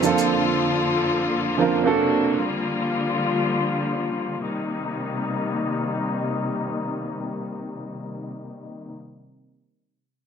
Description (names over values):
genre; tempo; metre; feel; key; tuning
amapiano; free time; none; none; C dorian; A4 = 440 Hz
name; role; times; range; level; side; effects
warm grand piano; accompaniment; 0.0-2.4 s; F3 to Bb4; -21 LUFS; right 6 dB; low-pass filter
bright studio string section; sustained chords; 0.0-8.9 s; F2 to A4; -24 LUFS; left 3 dB; low-pass filter
room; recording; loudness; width
light reverb, small room ambience; none; -21 LUFS; side -7 dB against mid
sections
0.0-4.4 A section; 4.4-8.6 B section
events
none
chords
0.0 Bbmaj7/F; 1.8 D7b13; 2.4 Gm7; 4.4 Cm7